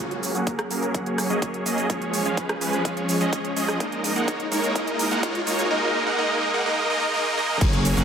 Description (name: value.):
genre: EDM, festival progressive house.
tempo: 126 BPM.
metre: 4/4.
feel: straight.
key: F# major.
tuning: A4 = 440 Hz.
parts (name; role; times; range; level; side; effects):
lush unison pad; sustained chords; 0.0-8.0 s; E#3 to A#4; -30 LUFS; right 1 dB; chorus, sidechain pumping.
supersaw chords; riff; 0.0-8.0 s; E#3 to F#5; -23 LUFS; right 1 dB; sidechain pumping, low-pass filter, tape echo.
big-room dance drum kit; drums; 0.0-8.0 s; crash cymbal, hi-hat, ride cymbal, rim click, shaker; -30 LUFS; right 2 dB; high-pass filter on hats, high-pass filter on snare, high-pass filter on perc, high-pass filter on cymbals, high-pass filter on room.
riser and downlifter; sound effects; 0.0-8.0 s; none; -33 LUFS; left 1 dB; none.
electronic kick drum; drums; 0.5-7.7 s; none; -25 LUFS; equal; high-pass filter on kick.
fat analog bass; bass; 7.6-8.0 s; F#1; -22 LUFS; equal; sidechain pumping.
room: moderate digital room reverb, RT60 1.1 s, digital ambience.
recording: high-pass filter.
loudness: -21 LUFS.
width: side -7 dB against mid.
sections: 0.0-7.6 A section.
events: build-up 0.0-7.6; riser 0.0-5.7; filter sweep on supersaw synth 0.0-7.6; filter sweep 0.0-7.6; drum fill 3.8-5.7.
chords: 0.0 F#add9; 1.9 C#; 3.8 G#sus2; 5.7 D#m.